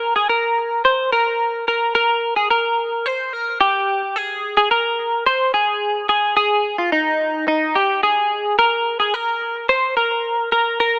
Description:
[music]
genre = indie pop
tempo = 108 BPM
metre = 4/4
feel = straight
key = unclear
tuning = A4 = 440 Hz
[part]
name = direct-recorded clean electric guitar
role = solo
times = 0.0-11.0 s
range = Eb4 to C5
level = -16 LUFS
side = equal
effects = analog chorus
[sound]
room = light reverb, digital ambience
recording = rough home demo mix, AM radio sound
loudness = -16 LUFS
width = side -30 dB against mid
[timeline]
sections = 0.0-11.0 A section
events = none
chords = none

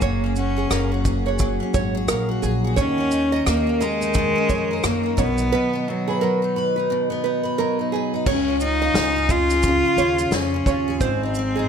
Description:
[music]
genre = acoustic pop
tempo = 87 BPM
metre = 4/4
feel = swing 60% on 16ths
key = unclear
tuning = A4 = 440 Hz
[part]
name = clear cello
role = melody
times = 0.0-11.7 s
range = F#3 to E#4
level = -22 LUFS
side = left 1 dB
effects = digital delay
[part]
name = picked steel-string acoustic guitar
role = accompaniment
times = 0.0-11.7 s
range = G#2 to B4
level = -24 LUFS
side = equal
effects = double-tracked left and right
[part]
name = nylon-string guitar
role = arpeggios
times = 0.0-11.7 s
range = G#4 to D#5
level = -27 LUFS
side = right 9 dB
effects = none
[part]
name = upright bass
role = bass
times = 0.0-11.7 s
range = F#1 to F#2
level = -26 LUFS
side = equal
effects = none
[part]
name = natural country drum kit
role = drums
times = 0.0-11.5 s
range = crash cymbal, kick drum, rim click, shaker, snare drum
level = -25 LUFS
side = left 1 dB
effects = none
[sound]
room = light reverb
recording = none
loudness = -18 LUFS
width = side -7 dB against mid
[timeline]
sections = 0.0-8.3 A section; 8.3-11.7 B section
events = none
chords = 0.0 F#add9; 2.8 D#m7; 5.2 B; 8.3 C#; 11.0 G#

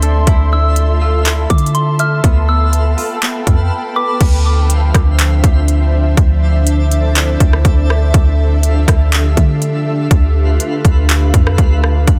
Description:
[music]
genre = hip hop, atmospheric cloud-rap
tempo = 122 BPM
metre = 4/4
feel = half-time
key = D minor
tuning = A4 = 440 Hz
[part]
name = ethereal airy pad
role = sustained chords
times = 0.0-12.2 s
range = D3 to C6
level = -23 LUFS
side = equal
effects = ensemble chorus, built-in reverb, sidechain pumping
[part]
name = Celtic harp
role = arpeggios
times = 0.0-6.3 s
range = B3 to E5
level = -27 LUFS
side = equal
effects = digital delay
[part]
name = clean 808-style bass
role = bass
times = 0.0-12.2 s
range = D2 to D3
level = -15 LUFS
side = equal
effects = none
[part]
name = trap drum kit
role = drums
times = 0.0-12.2 s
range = crash cymbal, handclaps, hi-hat, kick drum, rim click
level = -15 LUFS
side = equal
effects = none
[part]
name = twinkling granular texture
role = texture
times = 0.0-12.2 s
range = F3 to F5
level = -29 LUFS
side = equal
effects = built-in reverb
[part]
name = soft synth bell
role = melody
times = 0.5-4.2 s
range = C6 to F6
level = -23 LUFS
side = equal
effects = chorus, digital delay
[sound]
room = digital ambience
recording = dense, heavily limited modern master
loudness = -13 LUFS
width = mono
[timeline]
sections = 0.0-4.2 A section; 4.2-12.2 B section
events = none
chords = 0.0 Dm9; 2.2 G9/D; 4.2 Dm9; 8.1 Fmaj7/D; 10.1 G9/D

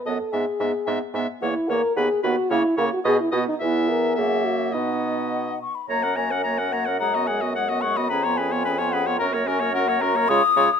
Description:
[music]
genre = quick classical-period movement for wind quintet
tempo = 109 BPM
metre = 2/4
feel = straight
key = B major, F# major from 5.9 s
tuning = A4 = 440 Hz
[part]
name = mellow French horn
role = accompaniment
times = 0.0-10.7 s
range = G#3 to A#4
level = -25 LUFS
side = equal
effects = none
[part]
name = mellow hollow concert flute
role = melody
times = 0.1-10.8 s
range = F#5 to D#6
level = -25 LUFS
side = left 8 dB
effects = none
[part]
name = bright oboe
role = second line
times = 0.1-10.7 s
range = A#4 to A#5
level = -28 LUFS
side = left 3 dB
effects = none
[part]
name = clear clarinet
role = accompaniment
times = 0.1-10.7 s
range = A#3 to C#5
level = -29 LUFS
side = right 10 dB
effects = none
[part]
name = warm bassoon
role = bass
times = 0.1-10.7 s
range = D#2 to C#3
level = -27 LUFS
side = right 4 dB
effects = none
[sound]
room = light reverb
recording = close, detailed microphones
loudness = -20 LUFS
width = side -7 dB against mid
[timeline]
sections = 0.0-5.9 A section; 5.9-10.8 B section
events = none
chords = 0.3 E/G#; 1.4 F#7/E (rootless); 2.0 B/D#; 2.5 F#7/C# (rootless); 3.1 B; 3.6 E; 4.2 F#7; 4.8 B; 5.9 F#; 7.0 G#m7/F#; 8.1 C#7/E#; 9.2 F#; 10.3 C#

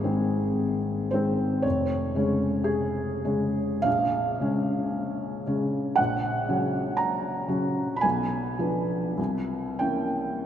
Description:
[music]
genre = classical, romantic nocturne for solo piano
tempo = 43-60 BPM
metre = 4/4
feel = rubato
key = unclear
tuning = A4 = 440 Hz
[part]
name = felt-muted upright piano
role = solo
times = 0.0-10.5 s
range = F1 to B5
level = -24 LUFS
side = equal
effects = none
[sound]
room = wet cathedral reverb, RT60 5.0 s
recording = in a vast, echoing space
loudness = -24 LUFS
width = side -10 dB against mid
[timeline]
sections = 0.0-10.5 A section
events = none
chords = 0.0 Ab; 1.6 Db/F; 3.9 Bbm7; 6.0 Gb/Bb; 8.0 Bdim7; 9.2 C7b9

